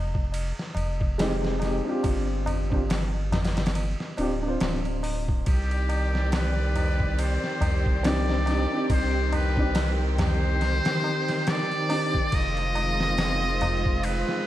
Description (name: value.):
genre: trip hop.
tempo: 70 BPM.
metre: 4/4.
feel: swing 57% on 16ths.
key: C harmonic minor.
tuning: A4 = 442 Hz.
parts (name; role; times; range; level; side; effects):
round analog bass; bass; 0.0-14.2 s; D1 to C2; -27 LUFS; equal; tube saturation.
trip hop sampler-style drum kit; drums; 0.1-14.5 s; hi-hat, kick drum, ride cymbal, snare drum; -29 LUFS; equal; none.
tabla; percussion; 0.1-14.2 s; none; -35 LUFS; left 1 dB; none.
warm upright piano; accompaniment; 1.2-12.1 s; Ab3 to C5; -29 LUFS; equal; tremolo, vintage 12-bit sampler grit, tape echo.
trumpet with metal mute; melody; 5.5-14.5 s; G4 to Eb5; -29 LUFS; equal; tape echo.
warm studio string section; sustained chords; 5.5-14.5 s; Eb3 to D5; -30 LUFS; equal; none.
room: light reverb, small room ambience.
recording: vinyl crackle.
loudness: -23 LUFS.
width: side -13 dB against mid.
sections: 0.0-14.5 A section.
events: none.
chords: 0.0 Fm7; 2.0 G7sus4; 5.5 Cmadd9; 12.3 Fm7.